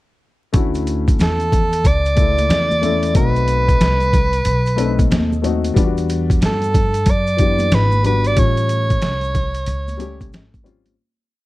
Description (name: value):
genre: hip hop, jazz-hop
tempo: 92 BPM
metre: 4/4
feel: swing 64% on 16ths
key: D major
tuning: A4 = 439 Hz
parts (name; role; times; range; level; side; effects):
- dark upright piano; accompaniment; 0.5-10.9 s; C#3 to A4; -23 LUFS; left 6 dB; none
- upright bass; bass; 0.5-10.9 s; G#1 to G2; -19 LUFS; equal; none
- boom bap sampler-style drum kit; drums; 0.5-11.0 s; hi-hat, kick drum, snare drum; -18 LUFS; equal; none
- maracas and congas; percussion; 0.6-11.0 s; none; -30 LUFS; right 2 dB; none
- bright soprano saxophone; melody; 1.2-10.3 s; A4 to D5; -19 LUFS; right 1 dB; none
room: light reverb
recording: dark, warm production, vinyl crackle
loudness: -14 LUFS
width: side -18 dB against mid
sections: 0.5-11.0 A section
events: fade-out 8.4-11.0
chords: 0.5 Dmaj9; 3.2 B7b9; 5.8 Em9; 8.4 A7alt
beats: | 0.55 1.20 1.85 2.50 | 3.15 3.81 4.46 5.11 | 5.76 6.41 7.07 7.72 | 8.37 9.02 9.68 10.33